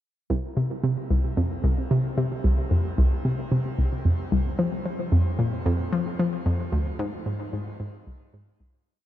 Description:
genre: ambient.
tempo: 112 BPM.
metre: 4/4.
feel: straight.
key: unclear.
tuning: A4 = 439 Hz.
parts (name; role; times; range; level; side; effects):
hollow square pluck; solo; 0.3-8.8 s; C2 to F3; -23 LUFS; equal; chorus, tape echo.
room: moderate shimmer reverb, RT60 9.9 s.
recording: dark, warm production.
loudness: -23 LUFS.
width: side -12 dB against mid.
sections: 0.3-8.9 A section.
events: fade-out 6.0-8.9.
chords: none.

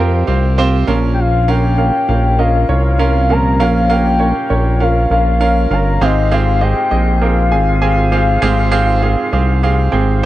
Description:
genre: pop.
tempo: 99 BPM.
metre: 4/4.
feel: swing 56% on 16ths.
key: F minor.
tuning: A4 = 440 Hz.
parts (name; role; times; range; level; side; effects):
clear grand piano; accompaniment; 0.0-10.3 s; Ab2 to Ab5; -17 LUFS; right 5 dB; none.
small flute group; sustained chords; 0.0-10.3 s; C4 to G5; -27 LUFS; left 2 dB; none.
fat analog bass; bass; 0.0-10.3 s; G1 to F2; -14 LUFS; equal; none.
soft octave-layered synth lead; melody; 1.1-10.2 s; Eb5 to Bb5; -18 LUFS; left 3 dB; chorus.
room: little or no reverb.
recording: dry, close 1970s-style studio recording.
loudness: -11 LUFS.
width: side -15 dB against mid.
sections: 0.0-10.3 A section.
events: none.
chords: 0.0 Csus4; 0.9 Bbm; 6.0 Fmadd9/Ab.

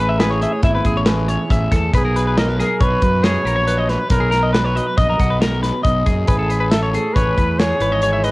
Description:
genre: math rock and midwest emo.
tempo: 138 BPM.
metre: 5/4.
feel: straight.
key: unclear.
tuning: A4 = 441 Hz.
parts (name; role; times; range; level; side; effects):
warm trumpet; melody; 0.0-8.3 s; E4 to D#5; -21 LUFS; equal; cassette tape.
electric guitar through a small old amp; accompaniment; 0.0-8.3 s; A2 to B4; -26 LUFS; right 3 dB; cassette tape.
twelve-string electric guitar; arpeggios; 0.0-8.3 s; F#4 to E5; -22 LUFS; left 2 dB; cassette tape.
fuzz fingered electric bass; bass; 0.0-8.3 s; G#1 to F#2; -20 LUFS; equal; overdrive.
modern studio drum kit; drums; 0.2-8.3 s; hi-hat, kick drum, snare drum; -19 LUFS; equal; cassette tape.
room: light reverb, studio reverb.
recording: home recording on cassette.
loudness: -14 LUFS.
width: side -21 dB against mid.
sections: 0.0-8.3 A section.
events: none.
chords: 0.0 Amaj9; 1.9 Bmaj7; 6.3 Amaj9.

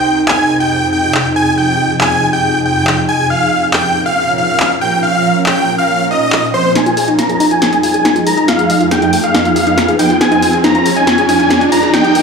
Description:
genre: uplifting trance.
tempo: 139 BPM.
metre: 4/4.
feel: straight.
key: F minor.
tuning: A4 = 441 Hz.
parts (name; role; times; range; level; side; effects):
big supersaw lead; melody; 0.0-12.2 s; C5 to Bb5; -14 LUFS; equal; low-pass filter, tape echo.
shimmering ambient pad; sustained chords; 0.0-12.2 s; Eb2 to Bb4; -16 LUFS; right 1 dB; chorus, built-in reverb.
punchy analog drum machine; drums; 0.3-12.2 s; handclaps, hi-hat, snare drum; -18 LUFS; left 1 dB; none.
wide unison pluck; arpeggios; 6.8-12.2 s; Eb4 to Bb4; -16 LUFS; left 1 dB; dub echo.
riser; sound effects; 7.7-12.2 s; none; -17 LUFS; equal; none.
room: moderate huge ambient reverb, RT60 6.5 s.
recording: played on a big sound system in a bare room, large studio reverb.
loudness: -10 LUFS.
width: side -5 dB against mid.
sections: 0.0-6.8 A section; 6.8-12.2 B section.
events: build-up 6.8-12.2; drum fill 6.8-12.2; filter sweep on supersaw synth 6.8-12.2; filter sweep on synth arpeggio sound 6.8-12.2; riser 7.7-12.2.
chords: 0.0 Fm7; 3.3 Bbm; 6.8 Fm7.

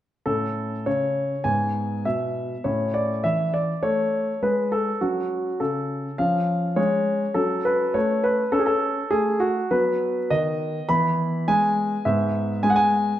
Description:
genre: classical-period piano sonatina.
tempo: 102 BPM.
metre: 4/4.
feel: straight.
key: A major, E major from 9.7 s.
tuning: A4 = 440 Hz.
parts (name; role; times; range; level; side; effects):
warm concert grand piano; solo; 0.3-13.2 s; G#2 to B5; -21 LUFS; equal; none.
room: wet recital hall reverb, RT60 1.4 s.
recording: none.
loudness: -21 LUFS.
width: side -12 dB against mid.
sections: 0.3-13.2 A section.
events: none.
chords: 0.3 A; 1.5 E/G#; 2.6 A; 5.0 F#m; 6.2 C#/E#; 7.4 F#m; 9.7 B/F#; 10.9 E; 12.1 E/G#.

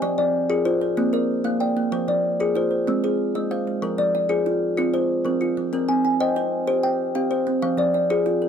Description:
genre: southern african traditional, mbira-style interlocking cycle.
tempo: 126 BPM (dotted quarters).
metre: 12/8.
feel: straight.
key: F dorian.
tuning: A4 = 440 Hz.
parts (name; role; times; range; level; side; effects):
kalimba; arpeggios; 0.0-8.5 s; F3 to Ab5; -22 LUFS; left 4 dB; none.
kalimba; arpeggios; 0.0-8.5 s; F3 to Ab5; -24 LUFS; right 6 dB; none.
room: light reverb.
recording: close, detailed microphones.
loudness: -20 LUFS.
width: side -8 dB against mid.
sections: 0.0-3.8 A section; 3.8-8.5 B section.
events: none.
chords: 0.0 Fm; 1.0 Bb; 1.9 Fm; 2.9 Ab; 3.8 Fm; 5.7 Cm; 7.6 Fm.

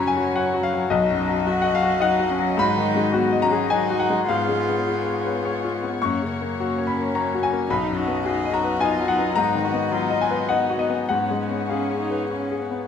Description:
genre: neoclassical piano and strings.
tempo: 106 BPM.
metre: 3/4.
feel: rubato.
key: F# major.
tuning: A4 = 440 Hz.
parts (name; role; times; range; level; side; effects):
clear cello; second line; 0.0-12.6 s; B3 to G#4; -29 LUFS; right 6 dB; none.
bright grand piano; accompaniment; 0.0-12.9 s; B1 to C#6; -21 LUFS; left 5 dB; none.
warm viola; accompaniment; 0.0-12.9 s; F#3 to D#4; -32 LUFS; right 3 dB; none.
warm chamber string section; sustained chords; 0.0-12.9 s; F#3 to D#5; -29 LUFS; left 2 dB; none.
room: light reverb.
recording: minimal, uncompressed stereo recording.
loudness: -20 LUFS.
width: side -8 dB against mid.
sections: 0.0-12.9 A section.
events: none.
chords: 0.0 F#; 0.9 B; 2.6 G#m7; 4.3 C#7/G#; 6.0 F#; 7.7 B; 9.4 G#m7; 11.1 C#7/G#.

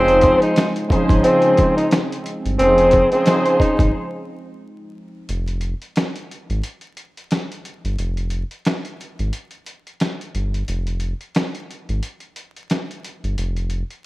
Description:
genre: hip hop, boom-bap hip-hop.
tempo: 89 BPM.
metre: 4/4.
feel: swing 58% on 16ths.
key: unclear.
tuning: A4 = 441 Hz.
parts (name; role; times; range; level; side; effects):
breathy tenor saxophone; melody; 0.0-3.9 s; C4 to Eb4; -16 LUFS; equal; high-pass filter, low-pass filter.
muted studio string section; accompaniment; 0.0-3.9 s; Db3 to C5; -19 LUFS; equal; cassette tape, high-pass filter, low-pass filter.
hollow soft pad; sustained chords; 0.0-5.2 s; F3 to Eb4; -29 LUFS; equal; none.
round analog bass; bass; 0.0-13.8 s; F1 to Ab1; -22 LUFS; equal; none.
dusty soul sampler-style drum kit; drums; 0.1-14.0 s; hi-hat, kick drum, snare drum; -22 LUFS; equal; overdrive.
room: moderate plate reverb, RT60 1.9 s, small room ambience.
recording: rough home demo mix, vinyl crackle.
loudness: -17 LUFS.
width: side -20 dB against mid.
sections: 0.0-5.3 A section; 5.3-14.1 B section.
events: break 3.9-5.3, 5.3-14.1.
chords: 0.0 Dbmaj9/F; 5.3 N.C..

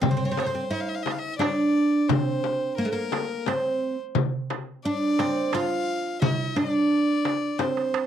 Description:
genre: Arabic maqam ensemble.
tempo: 87 BPM.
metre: 3/4.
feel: straight.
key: unclear.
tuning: A4 = 440 Hz.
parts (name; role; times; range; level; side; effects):
oud; melody; 0.0-8.1 s; Ab3+50c to F4; -24 LUFS; right 2 dB; none.
rich violin; second line; 0.0-8.1 s; Bb4 to F5; -31 LUFS; left 6 dB; none.
darbuka; percussion; 0.0-8.1 s; none; -29 LUFS; right 8 dB; none.
frame drum; percussion; 0.0-7.8 s; none; -29 LUFS; left 13 dB; none.
room: little or no reverb.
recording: dry, close 1970s-style studio recording.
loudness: -23 LUFS.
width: side -9 dB against mid.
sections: 0.0-8.1 A section.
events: drum fill 7.6-8.1.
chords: none.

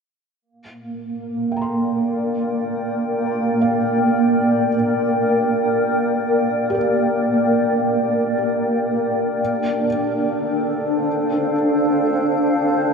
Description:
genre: ambient.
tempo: free time.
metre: none.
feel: none.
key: unclear.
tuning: A4 = 441 Hz.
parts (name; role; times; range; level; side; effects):
granular cloud pad; sustained chords; 0.9-12.9 s; Bb3 to G5; -18 LUFS; equal; built-in reverb.
felt-muted upright piano; arpeggios; 1.5-12.9 s; G4 to C6; -32 LUFS; left 1 dB; ping-pong delay.
room: wet huge ambient reverb, RT60 7.5 s.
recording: none.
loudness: -17 LUFS.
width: side -5 dB against mid.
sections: 0.4-12.9 A section.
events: fade-in on felt piano 0.4-12.9.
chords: 0.4 Bb6; 9.4 Dm7.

